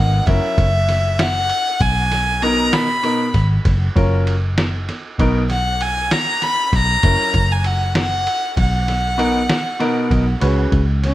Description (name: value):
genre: progressive instrumental, band music in an uneven meter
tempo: 195 BPM (eighths)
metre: 11/8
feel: straight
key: unclear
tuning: A4 = 440 Hz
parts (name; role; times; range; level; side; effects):
- dark violin; melody; 0.0-11.1 s; C#4 to B5; -19 LUFS; left 1 dB; plate reverb, tape echo
- clear baby grand piano; accompaniment; 0.0-10.8 s; B2 to B4; -20 LUFS; equal; none
- picked electric bass; bass; 0.0-11.1 s; F#1 to C#2; -18 LUFS; equal; none
- lo-fi sampler-style drum kit; drums; 0.3-11.1 s; kick drum, ride cymbal, snare drum; -22 LUFS; equal; none
room: moderate studio reverb, RT60 0.6 s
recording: none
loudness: -15 LUFS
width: side -15 dB against mid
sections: 0.0-11.1 A section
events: none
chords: 0.3 F#7; 1.8 Bmaj7; 3.7 F#maj7; 5.2 Bmaj7(no3); 7.0 F#7; 8.6 Bmaj7; 10.4 C#7sus4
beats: 0.27 0.58 0.89 1.20 1.50 | 1.81 2.12 2.42 2.73 3.04 3.35 3.65 3.96 4.27 4.58 4.88 | 5.19 5.50 5.81 6.12 6.42 6.73 7.04 7.34 7.65 7.96 8.27 | 8.57 8.88 9.19 9.50 9.80 10.11 10.42 10.73 11.04